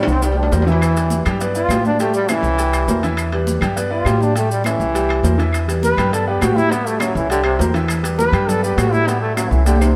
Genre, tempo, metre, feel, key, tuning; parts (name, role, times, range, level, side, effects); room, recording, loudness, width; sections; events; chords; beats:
latin, salsa; 203 BPM; 4/4; straight; A4 = 440 Hz
bright trombone; melody; 0.0-9.9 s; C3 to B4; -23 LUFS; equal
clear concert grand piano; accompaniment; 0.0-9.9 s; E3 to G5; -24 LUFS; equal
upright bass; bass; 0.0-9.9 s; C2 to A2; -22 LUFS; equal
timbales; percussion; 0.0-9.9 s; -29 LUFS; equal
congas; percussion; 0.1-9.9 s; -27 LUFS; equal
maracas; percussion; 0.1-10.0 s; -36 LUFS; equal
claves; percussion; 0.8-10.0 s; -34 LUFS; equal
moderate plate reverb, RT60 3.3 s; heard from further back in the room; -17 LUFS; mono
0.0-10.0 A section
drum fill 0.0-0.8, 9.7; trombone solo 0.0-10.0
0.2 C7; 0.8 Em; 1.4 Gadd9; 2.0 A7; 2.6 C7; 3.2 Em; 3.8 Gadd9; 4.4 A7; 4.9 C7; 5.5 Em; 6.1 Gadd9; 6.7 A7; 7.3 C7; 7.9 Em; 8.5 Gadd9; 9.1 A7
0.22 0.52 | 0.81 1.11 1.40 1.70 | 1.99 2.29 2.58 2.88 | 3.17 3.47 3.76 4.06 | 4.35 4.65 4.94 5.24 | 5.53 5.83 6.12 6.42 | 6.71 7.01 7.30 7.60 | 7.89 8.19 8.48 8.78 | 9.07 9.37 9.66